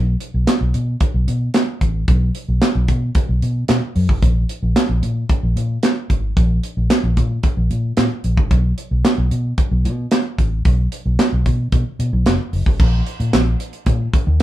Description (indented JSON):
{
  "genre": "early-eighties boogie funk",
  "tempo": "112 BPM",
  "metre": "4/4",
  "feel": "straight",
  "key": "unclear",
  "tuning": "A4 = 436 Hz",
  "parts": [
    { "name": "vintage muted fingered electric bass", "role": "bass", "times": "0.0-14.4 s", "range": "F#1 to B2", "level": "-18 LUFS", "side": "equal", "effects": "none" },
    { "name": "tight funk drum kit", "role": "drums", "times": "0.2-14.4 s", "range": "crash cymbal, handclaps, hi-hat, kick drum, snare drum", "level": "-17 LUFS", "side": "equal", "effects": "none" }
  ],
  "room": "moderate studio reverb, RT60 0.6 s",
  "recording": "band playing live in one room",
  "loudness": "-15 LUFS",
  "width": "side -14 dB against mid",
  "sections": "0.0-12.8 A section; 12.8-14.4 B section",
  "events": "none",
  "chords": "none"
}